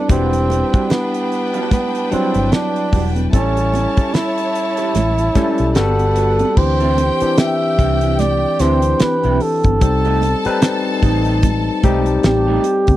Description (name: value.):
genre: lush 1970s-style soul.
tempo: 74 BPM.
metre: 4/4.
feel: swing 58% on 16ths.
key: unclear.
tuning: A4 = 440 Hz.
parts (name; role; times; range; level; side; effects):
breathy flugelhorn; melody; 0.0-13.0 s; B3 to E5; -19 LUFS; right 2 dB; none.
warm studio violin section; second line; 0.0-12.6 s; D4 to A5; -26 LUFS; left 2 dB; none.
barky tine electric piano; accompaniment; 0.0-13.0 s; E3 to B4; -21 LUFS; left 4 dB; overdrive.
electric guitar through a small old amp; riff; 0.1-12.9 s; G3 to A4; -25 LUFS; right 6 dB; ensemble chorus.
vintage muted fingered electric bass; bass; 0.1-13.0 s; E1 to D2; -18 LUFS; equal; none.
damped 70s drum kit; drums; 0.1-13.0 s; crash cymbal, hi-hat, kick drum, snare drum; -16 LUFS; equal; none.
congas; percussion; 0.1-13.0 s; none; -25 LUFS; right 5 dB; none.
mellow French horn section; sustained chords; 6.6-13.0 s; D3 to G4; -29 LUFS; left 5 dB; none.
room: little or no reverb.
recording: dry, close 1970s-style studio recording.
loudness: -14 LUFS.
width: side -14 dB against mid.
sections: 0.0-6.6 A section; 6.6-13.0 B section.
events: none.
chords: 0.1 Em9; 3.3 A7; 5.8 Gmaj9; 6.6 D9sus4; 9.8 Cm6.